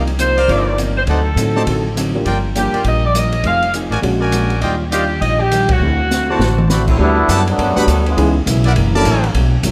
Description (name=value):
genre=jazz, big band swing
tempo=203 BPM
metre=4/4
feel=swing 62% on 8ths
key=unclear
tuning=A4 = 440 Hz
part: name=vintage hollow-body jazz guitar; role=accompaniment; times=0.0-9.7 s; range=F#2 to A4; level=-25 LUFS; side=equal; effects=none
part: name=upright bass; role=bass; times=0.0-9.7 s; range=F1 to A2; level=-19 LUFS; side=equal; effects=none
part: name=open jazz drum kit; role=drums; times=0.1-9.7 s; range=crash cymbal, hi-hat, kick drum, ride cymbal, snare drum, toms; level=-25 LUFS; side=equal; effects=none
part: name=clear saxophone section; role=melody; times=0.2-6.7 s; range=Gb4 to F5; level=-20 LUFS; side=equal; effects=none
part: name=brilliant trumpet section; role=stabs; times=0.4-9.3 s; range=Eb4 to B5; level=-24 LUFS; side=equal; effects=none
part: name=dark grand piano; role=accompaniment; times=0.5-9.1 s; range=E3 to A4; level=-24 LUFS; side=equal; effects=none
part: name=muted trombone section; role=second line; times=6.7-8.3 s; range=C#3 to F#4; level=-20 LUFS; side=equal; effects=none
room=light reverb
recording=none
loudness=-15 LUFS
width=mono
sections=0.0-7.0 A section; 7.0-9.7 B section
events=band accent 5.7; drum fill 6.1-6.7; trombone section solo 7.0-9.7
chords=0.0 Cm11; 1.1 D7b9; 2.3 Gm7; 3.4 Fm7; 4.0 Bb7alt; 4.6 Ebmaj9; 5.8 D7; 7.0 Gmaj9; 8.2 C#m7; 8.8 F#7alt